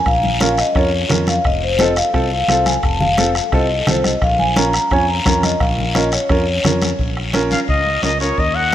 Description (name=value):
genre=latin, cumbia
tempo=173 BPM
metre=4/4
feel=straight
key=Bb harmonic minor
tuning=A4 = 440 Hz
part: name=vibraphone with medium mallets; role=melody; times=0.0-6.6 s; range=C5 to Bb5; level=-18 LUFS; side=left 2 dB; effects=none
part: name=fingered electric bass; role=bass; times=0.1-8.7 s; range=F1 to F2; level=-22 LUFS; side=equal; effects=none
part: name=bombo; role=percussion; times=0.1-8.7 s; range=none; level=-22 LUFS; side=equal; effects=none
part: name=congas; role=percussion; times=0.1-8.7 s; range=none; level=-24 LUFS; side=left 1 dB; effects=none
part: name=guiro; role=percussion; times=0.1-8.7 s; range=none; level=-24 LUFS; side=left 3 dB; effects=none
part: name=bright upright piano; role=accompaniment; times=0.4-8.7 s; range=C4 to Db5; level=-21 LUFS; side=right 3 dB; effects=none
part: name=clear trumpet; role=second line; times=7.5-8.7 s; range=Db5 to Gb5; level=-17 LUFS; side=left 2 dB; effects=none
room=moderate lush hall reverb, RT60 2.6 s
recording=rough home demo mix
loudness=-14 LUFS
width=side -11 dB against mid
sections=0.0-7.0 A section; 7.0-8.7 B section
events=trumpet solo 7.0-8.7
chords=0.0 Bbm; 1.4 F7; 4.2 Bbm